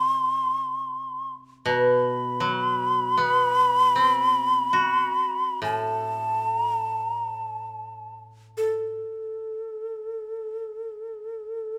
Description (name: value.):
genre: japanese traditional, Japanese chamber music.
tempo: free time.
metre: none.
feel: none.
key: A kumoi.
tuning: A4 = 441 Hz.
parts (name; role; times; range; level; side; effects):
breathy hollow shakuhachi; melody; 0.0-11.8 s; A4 to C6; -26 LUFS; equal; none.
koto; accompaniment; 0.0-9.0 s; A2 to F#4; -30 LUFS; equal; none.
room: moderate recital hall reverb, RT60 1.6 s.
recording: none.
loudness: -25 LUFS.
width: mono.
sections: 0.0-11.8 A section.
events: slowing down 10.6-11.8.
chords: none.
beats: free time.